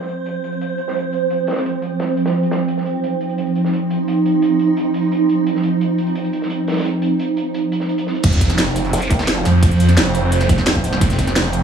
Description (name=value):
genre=dark technical drum and bass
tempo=173 BPM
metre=4/4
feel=straight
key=unclear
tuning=A4 = 440 Hz
part: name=swarming drone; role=sustained chords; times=0.0-11.6 s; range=F3 to C5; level=-18 LUFS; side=right 2 dB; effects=built-in reverb, sidechain pumping
part: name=crunchy breakbeat drum kit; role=drums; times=0.0-11.6 s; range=hi-hat, snare drum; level=-30 LUFS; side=right 1 dB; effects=high-pass filter on hats, low-pass filter on hats, high-pass filter on snare, low-pass filter on snare, high-pass filter on room, low-pass filter on room
part: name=snarling distorted saw bass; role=bass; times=8.2-11.6 s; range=F1 to F2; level=-16 LUFS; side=right 1 dB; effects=overdrive
part: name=drum and bass drum kit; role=drums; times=8.2-11.6 s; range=crash cymbal, hi-hat, snare drum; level=-20 LUFS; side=equal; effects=low-pass filter on snare, low-pass filter on hats, low-pass filter on cymbals, low-pass filter on toms
part: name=electronic kick drum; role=drums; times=8.2-11.3 s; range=none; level=-16 LUFS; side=right 1 dB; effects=none
part: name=sub drop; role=sound effects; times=8.2-9.6 s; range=none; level=-22 LUFS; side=equal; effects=none
part: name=vowel-sweep wobble bass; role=bass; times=8.9-9.4 s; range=F1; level=-20 LUFS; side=equal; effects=chorus
room=light reverb, digital ambience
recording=small room ambience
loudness=-15 LUFS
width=side -7 dB against mid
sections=0.0-8.2 A section; 8.2-11.6 B section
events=drop 8.2-11.6; impact 8.2-9.6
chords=0.0 F5